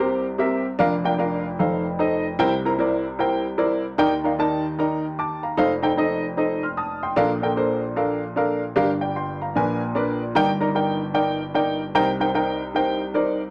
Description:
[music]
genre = gospel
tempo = 151 BPM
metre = 4/4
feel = swing 64% on 8ths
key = Bb major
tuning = A4 = 440 Hz
[part]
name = warm upright piano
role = solo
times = 0.0-13.5 s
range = F1 to F6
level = -23 LUFS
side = equal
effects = slapback echo
[sound]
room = studio ambience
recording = dry, close 1970s-style studio recording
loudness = -23 LUFS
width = mono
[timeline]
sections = 0.0-13.5 A section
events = none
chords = 0.0 C7; 0.8 Bb/F; 1.6 F7; 2.4 C7; 4.0 Ebmaj7(no3); 5.6 F7; 7.2 Bbmaj7; 8.8 Gm7; 9.6 Bb7b9; 10.4 Ebmaj7/G; 11.9 Cm7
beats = 0.39 | 0.79 1.19 1.59 1.99 | 2.39 2.79 3.18 3.58 | 3.98 4.38 4.78 5.17 | 5.57 5.97 6.37 6.77 | 7.16 7.56 7.96 8.36 | 8.76 9.16 9.55 9.95 | 10.35 10.75 11.15 11.55 | 11.95 12.35 12.74 13.14

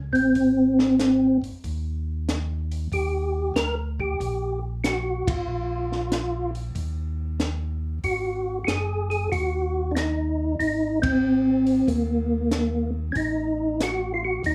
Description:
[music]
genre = soul jazz organ trio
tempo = 94 BPM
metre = 4/4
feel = swing 68% on 8ths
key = unclear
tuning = A4 = 441 Hz
[part]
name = mellow tonewheel organ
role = bass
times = 0.0-14.5 s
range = Gb1 to Eb2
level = -32 LUFS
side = equal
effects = slow rotary speaker
[part]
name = percussive tonewheel organ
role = melody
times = 0.1-14.5 s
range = Bb3 to Bb4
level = -25 LUFS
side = equal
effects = chorus vibrato, fast rotary speaker
[part]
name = compact cocktail drum kit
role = drums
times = 0.2-14.5 s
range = hi-hat, kick drum, ride cymbal, snare drum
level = -32 LUFS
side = equal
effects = none
[sound]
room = moderate studio reverb, RT60 0.6 s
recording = studio ambience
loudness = -25 LUFS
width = mono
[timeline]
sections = 0.0-14.5 A section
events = band accent 5.2-5.5, 10.9-11.2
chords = 0.4 Ab; 2.9 Eb; 5.5 Bb5; 6.8 N.C.; 8.0 Ab9; 13.1 F7b9/A (rootless)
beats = | 0.36 0.99 1.64 2.27 | 2.91 3.55 4.19 4.83 | 5.47 6.11 6.75 7.39 | 8.03 8.67 9.31 9.95 | 10.59 11.23 11.87 12.51 | 13.15 13.79 14.43

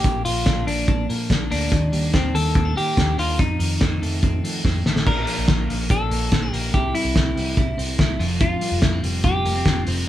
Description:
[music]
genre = jangly indie pop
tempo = 144 BPM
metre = 4/4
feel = straight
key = F mixolydian, F major from 5.1 s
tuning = A4 = 439 Hz
[part]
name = clean electric guitar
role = melody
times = 0.0-9.8 s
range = C4 to Bb4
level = -26 LUFS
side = left 1 dB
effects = none
[part]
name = twelve-string electric guitar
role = arpeggios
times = 0.0-10.1 s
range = F2 to F4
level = -27 LUFS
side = equal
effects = none
[part]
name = vintage muted picked electric bass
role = bass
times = 0.0-10.0 s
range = F1 to F3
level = -25 LUFS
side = equal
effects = none
[part]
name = cloth-damped thuddy drum kit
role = drums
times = 0.0-10.0 s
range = crash cymbal, hi-hat, kick drum, snare drum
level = -21 LUFS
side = equal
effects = none
[sound]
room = light reverb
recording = band playing live in one room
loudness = -18 LUFS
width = side -13 dB against mid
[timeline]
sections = 0.0-5.1 A section; 5.1-10.1 B section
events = drum fill 4.7-5.1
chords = 0.0 Bb; 1.7 Ebmaj7; 3.4 F7; 5.1 Bb; 6.7 C; 8.2 Fsus2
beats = | 0.04 0.46 0.88 1.30 | 1.72 2.14 2.56 2.98 | 3.40 3.81 4.23 4.65 | 5.07 5.49 5.90 6.32 | 6.74 7.16 7.57 7.99 | 8.41 8.83 9.24 9.66 | 10.08

